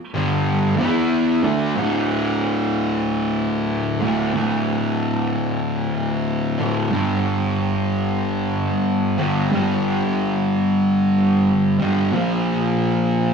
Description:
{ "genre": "metal", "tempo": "93 BPM", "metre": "4/4", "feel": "straight", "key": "D minor", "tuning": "A4 = 440 Hz", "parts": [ { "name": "fuzz guitar", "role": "solo", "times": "0.1-13.3 s", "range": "D2 to E4", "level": "-18 LUFS", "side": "equal", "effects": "distortion" } ], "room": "wet small room reverb, RT60 0.6 s", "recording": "rough rehearsal-room recording, studio ambience", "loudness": "-18 LUFS", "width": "side -6 dB against mid", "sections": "0.0-1.8 A section; 1.8-13.3 B section", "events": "none", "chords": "0.2 G5; 0.8 E5; 1.4 D5; 6.9 G5; 12.1 Bb5" }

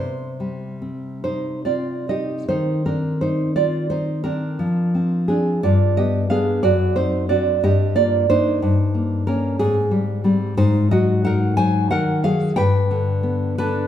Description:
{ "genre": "romantic piece for solo classical guitar", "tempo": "45-64 BPM (dotted quarters)", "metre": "6/8", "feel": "rubato", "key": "C minor", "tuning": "A4 = 440 Hz", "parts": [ { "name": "nylon-string guitar", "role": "solo", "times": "0.0-13.9 s", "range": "F#2 to Ab5", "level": "-17 LUFS", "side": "equal", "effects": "none" } ], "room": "wet recital hall reverb, RT60 1.4 s", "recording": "recorded in a church or concert hall", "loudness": "-17 LUFS", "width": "side -10 dB against mid", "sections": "0.0-2.5 A section; 2.5-13.9 B section", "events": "none", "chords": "0.0 Cm; 2.5 Cm/Eb; 4.6 Bb9/F; 5.6 G7; 6.6 D7/F#; 7.6 Gm; 8.6 Eb7/G; 9.6 Abmaj7; 10.6 Ab7; 12.6 G" }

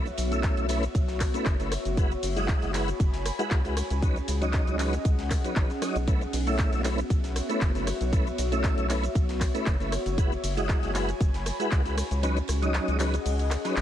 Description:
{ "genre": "deep house", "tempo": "117 BPM", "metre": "4/4", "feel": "swing 53% on 16ths", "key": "unclear", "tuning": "A4 = 440 Hz", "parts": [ { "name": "tonewheel organ", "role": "stabs", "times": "0.0-13.8 s", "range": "F#3 to E5", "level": "-31 LUFS", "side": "equal", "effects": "chorus vibrato, fast rotary speaker, sidechain pumping, analog delay" }, { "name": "rubbery square bass", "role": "bass", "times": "0.0-13.8 s", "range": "F#1 to C#2", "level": "-29 LUFS", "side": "equal", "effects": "sidechain pumping" }, { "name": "airy breathy pad", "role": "texture", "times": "0.0-13.8 s", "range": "B3 to B5", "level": "-34 LUFS", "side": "left 2 dB", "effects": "chorus, sidechain pumping" }, { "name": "deep reggae drum kit", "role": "drums", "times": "0.1-13.8 s", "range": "hi-hat, ride cymbal, snare drum", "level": "-45 LUFS", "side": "right 2 dB", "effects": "sidechain pumping on cymbals, high-pass filter on cymbals, vintage 12-bit sampler grit, small room reverb, sidechain pumping on hats, high-pass filter on hats, high-pass filter on snare, high-pass filter on room" }, { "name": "house drum kit", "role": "drums", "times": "0.1-13.8 s", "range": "handclaps, hi-hat, ride cymbal, rim click, shaker", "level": "-35 LUFS", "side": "equal", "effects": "vintage 12-bit sampler grit, small room reverb" }, { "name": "electronic kick drum", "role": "drums", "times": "0.4-11.8 s", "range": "none", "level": "-25 LUFS", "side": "equal", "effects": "vintage 12-bit sampler grit, small room reverb" } ], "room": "small room ambience", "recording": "dense, heavily limited modern master", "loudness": "-24 LUFS", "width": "side -11 dB against mid", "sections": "0.0-13.8 A section", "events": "kick drops out 12.2-13.8", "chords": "0.0 B9sus4; 2.0 F#9sus4; 3.8 C#9sus4; 6.1 B9sus4; 10.2 F#9sus4; 12.0 C#9sus4" }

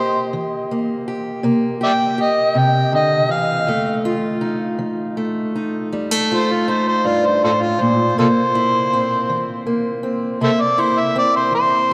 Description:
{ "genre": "acoustic country blues, solo or duo", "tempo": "54 BPM (dotted quarters)", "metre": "12/8", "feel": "straight", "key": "C mixolydian", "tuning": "A4 = 440 Hz", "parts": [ { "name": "overdriven harmonica", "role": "melody", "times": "0.0-11.9 s", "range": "F4 to G5", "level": "-21 LUFS", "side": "equal", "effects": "none" }, { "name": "fingerpicked steel-string acoustic guitar", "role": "accompaniment", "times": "0.0-11.9 s", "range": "F2 to G4", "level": "-22 LUFS", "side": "equal", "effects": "none" } ], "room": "wet cathedral reverb, RT60 5.2 s", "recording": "recorded in a church or concert hall", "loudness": "-18 LUFS", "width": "mono", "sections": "0.0-11.9 A section", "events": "none", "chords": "0.0 C7; 3.7 F7; 8.2 C7" }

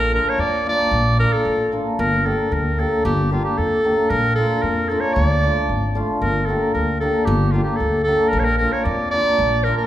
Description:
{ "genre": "klezmer", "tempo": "114 BPM", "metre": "2/4", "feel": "straight", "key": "unclear", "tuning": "A4 = 436 Hz", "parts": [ { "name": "bright clarinet", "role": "melody", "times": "0.0-9.9 s", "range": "F4 to D5", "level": "-19 LUFS", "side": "right 1 dB", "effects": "none" }, { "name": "upright bass", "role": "bass", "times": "0.0-9.7 s", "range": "G1 to F2", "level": "-22 LUFS", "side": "equal", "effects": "none" }, { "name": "cimbalom", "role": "accompaniment", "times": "0.1-9.8 s", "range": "A3 to G4", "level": "-23 LUFS", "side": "left 2 dB", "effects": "none" } ], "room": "wet recital hall reverb, RT60 1.7 s", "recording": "recorded in a church or concert hall", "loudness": "-17 LUFS", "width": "side -12 dB against mid", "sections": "0.0-6.2 A section; 6.2-9.9 A section", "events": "none", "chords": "0.0 Bb; 2.0 Gm; 4.1 Bb; 5.2 Dm; 6.2 Gm; 8.3 Bb" }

